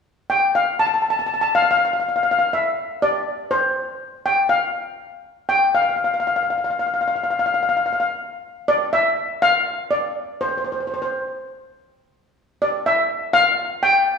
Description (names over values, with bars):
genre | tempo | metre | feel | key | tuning
calypso | 122 BPM | 4/4 | swing 54% on 16ths | F major | A4 = 442 Hz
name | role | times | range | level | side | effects
steel pan | solo | 0.3-14.2 s | C5 to A5 | -18 LUFS | left 2 dB | none
room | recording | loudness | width
wet scoring stage reverb, RT60 1.5 s | recorded in a church or concert hall, small room ambience | -18 LUFS | side -6 dB against mid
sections
0.8-8.7 A section; 8.7-14.2 B section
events
none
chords
none